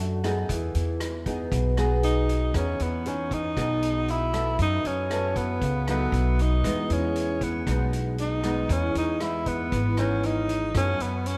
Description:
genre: bossa nova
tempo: 117 BPM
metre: 4/4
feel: straight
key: E major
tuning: A4 = 441 Hz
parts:
  - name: nylon-string guitar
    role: accompaniment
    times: 0.0-11.4 s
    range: F#2 to A4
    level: -32 LUFS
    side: equal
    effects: lush chorus
  - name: upright bass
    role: bass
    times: 0.0-11.4 s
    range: G#1 to F#2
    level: -30 LUFS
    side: equal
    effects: none
  - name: vintage drum kit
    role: drums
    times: 0.2-11.4 s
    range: hi-hat, kick drum, rim click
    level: -38 LUFS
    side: equal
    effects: none
  - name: breathy tenor saxophone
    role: melody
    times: 2.0-11.4 s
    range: B3 to E4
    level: -30 LUFS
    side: equal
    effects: delay
room: moderate lush hall reverb, RT60 1.9 s, small room ambience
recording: dreamy mix soaked in reverb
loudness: -26 LUFS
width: mono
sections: 0.0-2.5 A section; 2.5-11.4 B section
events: tenor saxophone solo 0.0-2.5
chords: 0.5 Emaj7; 4.6 F#m7; 6.1 B7; 6.6 Emaj7; 8.7 C#m9; 10.7 F#m7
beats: | 0.50 1.01 1.52 2.03 | 2.54 3.06 3.57 4.08 | 4.59 5.11 5.62 6.13 | 6.64 7.16 7.67 8.18 | 8.69 9.21 9.72 10.23 | 10.75 11.26

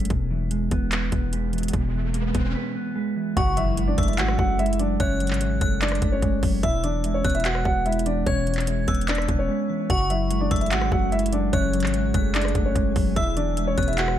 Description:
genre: hip hop, trap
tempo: 147 BPM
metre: 4/4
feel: half-time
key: F# minor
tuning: A4 = 440 Hz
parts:
  - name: mellow electric guitar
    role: accompaniment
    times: 0.0-14.2 s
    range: B2 to B4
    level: -27 LUFS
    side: right 1 dB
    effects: tape echo
  - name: long sustained 808-style bass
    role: bass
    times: 0.0-14.2 s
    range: E1 to G#1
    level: -26 LUFS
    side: equal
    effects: none
  - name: trap drum kit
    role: drums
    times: 0.0-14.2 s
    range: handclaps, hi-hat, kick drum, rim click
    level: -26 LUFS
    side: equal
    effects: none
  - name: riser and impact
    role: sound effects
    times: 1.3-5.0 s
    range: none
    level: -34 LUFS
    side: equal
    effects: none
  - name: dark concert grand piano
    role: melody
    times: 3.4-14.2 s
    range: C#4 to F#5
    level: -26 LUFS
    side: equal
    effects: tape echo
  - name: metallic FM bell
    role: second line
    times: 3.4-14.2 s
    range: C#6 to G#6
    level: -33 LUFS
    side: left 2 dB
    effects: chorus, tremolo, phaser, tape echo
  - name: glassy FM pad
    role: sustained chords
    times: 10.3-14.2 s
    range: E3 to G#4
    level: -34 LUFS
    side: equal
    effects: ensemble chorus, built-in reverb
room: little or no reverb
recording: echo-heavy mix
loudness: -21 LUFS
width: side -11 dB against mid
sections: 0.0-3.4 A section; 3.4-14.2 B section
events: riser 1.3-3.4; break 2.6-3.4, 9.5-9.9; impact 3.4-5.0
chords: 0.1 E; 3.4 F#madd9; 6.6 E; 9.9 F#madd9; 13.2 E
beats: | 0.10 0.51 0.92 1.33 | 1.74 2.14 2.55 2.96 | 3.37 3.77 4.18 4.59 | 5.00 5.41 5.82 6.22 | 6.63 7.04 7.45 7.86 | 8.27 8.67 9.08 9.49 | 9.90 10.31 10.71 11.12 | 11.53 11.94 12.35 12.76 | 13.16 13.57 13.98

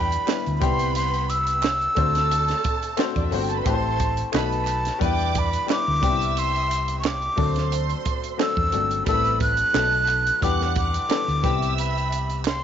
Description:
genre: lush 1970s-style soul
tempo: 89 BPM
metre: 4/4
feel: swing 54% on 16ths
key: unclear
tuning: A4 = 440 Hz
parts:
  - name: breathy jazz flute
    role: melody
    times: 0.0-12.6 s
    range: G5 to F#6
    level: -24 LUFS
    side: equal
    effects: none
  - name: warm studio violin section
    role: second line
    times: 0.0-12.4 s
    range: B3 to F#6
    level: -31 LUFS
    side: right 15 dB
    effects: none
  - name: clear concert grand piano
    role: accompaniment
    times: 0.0-12.6 s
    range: E3 to C5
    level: -28 LUFS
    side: left 14 dB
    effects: none
  - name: hollow-body short-scale fingered electric bass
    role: bass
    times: 0.0-12.6 s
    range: G1 to E2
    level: -26 LUFS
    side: equal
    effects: none
  - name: compact cocktail drum kit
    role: drums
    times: 0.1-12.6 s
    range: hi-hat, kick drum, snare drum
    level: -27 LUFS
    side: right 3 dB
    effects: none
  - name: group handclap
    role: percussion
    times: 0.3-12.6 s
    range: none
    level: -34 LUFS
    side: right 14 dB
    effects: none
room: little or no reverb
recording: 1960s-style stereo with parts hard left and right, nothing above 7.5 kHz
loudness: -20 LUFS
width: side -9 dB against mid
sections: 0.0-12.6 A section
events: none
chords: 0.0 Em7; 0.6 Cmaj7; 2.0 D7; 3.7 Am7; 4.3 B7; 5.0 Em7; 6.0 Cmaj7; 7.4 D7; 9.1 Am7; 9.7 B7; 10.4 Em7; 11.4 Cmaj7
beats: 0.28 | 0.96 1.63 2.31 2.98 | 3.66 4.33 5.01 5.69 | 6.36 7.04 7.71 8.39 | 9.07 9.74 10.42 11.10 | 11.77 12.45

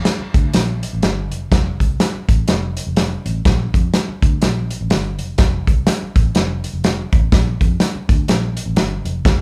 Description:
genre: uptempo 1960s-style soul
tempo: 124 BPM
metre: 4/4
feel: swing 59% on 8ths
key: unclear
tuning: A4 = 441 Hz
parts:
  - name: warm soul drum kit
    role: drums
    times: 0.1-9.4 s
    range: hi-hat, kick drum, snare drum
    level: -18 LUFS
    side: equal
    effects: none
  - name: vintage muted fingered electric bass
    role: bass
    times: 0.2-9.4 s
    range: F1 to F2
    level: -24 LUFS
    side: equal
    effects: none
room: light reverb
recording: band playing live in one room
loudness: -18 LUFS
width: mono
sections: 0.0-9.4 A section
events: none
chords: none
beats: 0.05 0.54 1.02 | 1.51 1.99 2.48 2.96 | 3.45 3.93 4.42 4.90 | 5.38 5.87 6.35 6.83 | 7.32 7.80 8.29 8.77 | 9.25

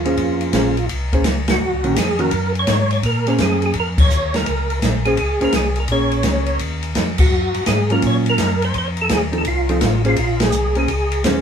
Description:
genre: soul jazz organ trio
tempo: 168 BPM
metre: 4/4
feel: swing 66% on 8ths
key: Bb minor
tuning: A4 = 440 Hz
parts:
  - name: percussive tonewheel organ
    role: melody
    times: 0.0-11.2 s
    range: F4 to Db5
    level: -21 LUFS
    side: right 1 dB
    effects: slow rotary speaker, chorus vibrato
  - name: mellow tonewheel organ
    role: bass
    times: 0.0-11.4 s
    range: A1 to Bb2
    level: -21 LUFS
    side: left 1 dB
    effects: chorus vibrato, slow rotary speaker
  - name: hollow-body jazz guitar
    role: accompaniment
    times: 0.1-11.4 s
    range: Eb3 to C5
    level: -20 LUFS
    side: right 1 dB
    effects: none
  - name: open jazz drum kit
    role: drums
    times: 0.1-11.4 s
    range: crash cymbal, hi-hat, kick drum, ride cymbal, snare drum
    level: -20 LUFS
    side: equal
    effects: none
room: moderate studio ambience, RT60 0.5 s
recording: band playing live in one room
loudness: -15 LUFS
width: side -7 dB against mid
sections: 0.0-11.4 A section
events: band accent 1.4, 3.9, 7.1, 10.4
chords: 0.0 Bbm9; 1.6 Ebm7; 3.0 Bbm9; 7.3 Gbmaj7; 8.7 F7; 10.2 Bbm9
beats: | 0.18 0.54 0.89 1.25 | 1.61 1.96 2.32 2.68 | 3.03 3.39 3.75 4.10 | 4.46 4.82 5.17 5.53 | 5.89 6.24 6.60 6.96 | 7.32 7.67 8.03 8.39 | 8.74 9.10 9.46 9.82 | 10.17 10.53 10.89 11.25

